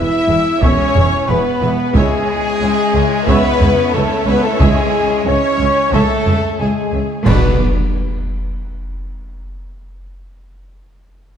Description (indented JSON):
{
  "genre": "cinematic, epic orchestral film score",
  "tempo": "90 BPM",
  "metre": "4/4",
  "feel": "straight",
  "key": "unclear",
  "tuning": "A4 = 440 Hz",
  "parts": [
    { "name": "rich symphonic violin section", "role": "melody", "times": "0.0-7.6 s", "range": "G#4 to E5", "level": "-26 LUFS", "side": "left 3 dB", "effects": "none" },
    { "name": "rich chamber violin section", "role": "second line", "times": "0.0-7.6 s", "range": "G#4 to E5", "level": "-23 LUFS", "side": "left 3 dB", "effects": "none" },
    { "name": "silver concert flute", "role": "second line", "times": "0.0-7.6 s", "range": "G#5 to E6", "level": "-25 LUFS", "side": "left 3 dB", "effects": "none" },
    { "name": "dark symphonic viola section", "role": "accompaniment", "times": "0.0-7.6 s", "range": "F#4 to E5", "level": "-26 LUFS", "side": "right 2 dB", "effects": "none" },
    { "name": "warm French horn section", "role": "sustained chords", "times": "0.0-7.6 s", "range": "G#3 to E4", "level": "-18 LUFS", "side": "left 2 dB", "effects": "none" },
    { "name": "warm symphonic string section", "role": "sustained chords", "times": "0.0-7.6 s", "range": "B3 to E5", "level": "-27 LUFS", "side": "right 1 dB", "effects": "none" },
    { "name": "mellow trumpet section", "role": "stabs", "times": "0.0-7.6 s", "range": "G#4 to E5", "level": "-23 LUFS", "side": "equal", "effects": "none" },
    { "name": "rich symphonic cello section", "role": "bass", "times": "0.0-7.6 s", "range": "C#2 to B2", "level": "-21 LUFS", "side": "right 2 dB", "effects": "none" },
    { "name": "warm studio double bass section", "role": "bass", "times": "0.0-7.6 s", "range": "E1 to C#2", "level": "-20 LUFS", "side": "right 2 dB", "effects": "none" },
    { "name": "taiko ensemble", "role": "drums", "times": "0.6-6.6 s", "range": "none", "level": "-18 LUFS", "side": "equal", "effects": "none" },
    { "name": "clash cymbals and concert bass drum", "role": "percussion", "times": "7.3-8.5 s", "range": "none", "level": "-21 LUFS", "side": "equal", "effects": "none" },
    { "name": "timpani", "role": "percussion", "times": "7.3-7.6 s", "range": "B2", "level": "-25 LUFS", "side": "equal", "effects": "none" },
    { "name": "impact", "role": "sound effects", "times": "7.3-9.9 s", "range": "none", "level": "barely audible", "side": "none", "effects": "none" }
  ],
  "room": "moderate scoring stage reverb, RT60 1.9 s",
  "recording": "dark, warm production",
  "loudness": "-12 LUFS",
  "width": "side -8 dB against mid",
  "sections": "0.0-7.3 A section; 7.3-9.9 B section",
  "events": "band accent 7.3-7.9; impact 7.3-9.9",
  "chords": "0.0 E; 1.9 C#m; 7.3 Bm",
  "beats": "0.62 1.29 | 1.95 2.61 3.28 3.94 | 4.61 5.27 5.93 6.60 | 7.26 7.92 8.59 9.25"
}